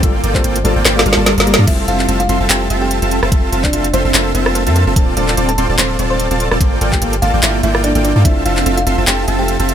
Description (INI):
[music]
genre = future bass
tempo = 146 BPM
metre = 4/4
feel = swing 55% on 16ths, half-time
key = F major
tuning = A4 = 444 Hz
[part]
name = overdriven tine electric piano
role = accompaniment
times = 0.0-1.6 s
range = G3 to A4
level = -24 LUFS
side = left 6 dB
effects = none
[part]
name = dense compressed supersaw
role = riff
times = 0.0-9.7 s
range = Bb3 to C6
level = -17 LUFS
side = right 1 dB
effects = sidechain pumping, ping-pong delay
[part]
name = long sustained 808-style bass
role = bass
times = 0.0-9.7 s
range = D1 to G2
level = -17 LUFS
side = equal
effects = sidechain pumping
[part]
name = electronic kick drum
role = drums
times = 0.0-8.3 s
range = none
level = -15 LUFS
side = equal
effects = none
[part]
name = trap drum kit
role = drums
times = 0.0-9.7 s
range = crash cymbal, handclaps, hi-hat, rim click, snare drum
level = -17 LUFS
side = equal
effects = none
[part]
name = kalimba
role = melody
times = 0.3-9.6 s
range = G3 to C6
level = -20 LUFS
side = equal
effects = sidechain pumping, ping-pong delay
[sound]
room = little or no reverb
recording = none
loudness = -11 LUFS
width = side -9 dB against mid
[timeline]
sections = 0.0-1.7 A section; 1.7-9.7 A section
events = drop 0.0-1.7, 1.7-9.7; drum fill 0.9-1.7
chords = 0.0 Gm9; 1.7 Fmaj7; 5.0 Dm7; 6.6 Gm9; 8.2 Fmaj7